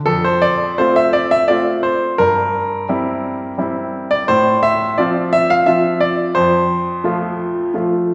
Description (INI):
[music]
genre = classical-period piano sonatina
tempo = 86 BPM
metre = 3/4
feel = rubato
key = F major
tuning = A4 = 440 Hz
[part]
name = clear baby grand piano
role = solo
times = 0.1-8.1 s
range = F2 to F5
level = -16 LUFS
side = equal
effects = none
[sound]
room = wet recital hall reverb, RT60 1.7 s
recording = heard from further back in the room, nothing above 10.6 kHz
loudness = -16 LUFS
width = mono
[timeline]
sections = 0.1-8.1 A section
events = none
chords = 0.1 F; 2.2 C7/G; 4.3 F/A; 6.3 F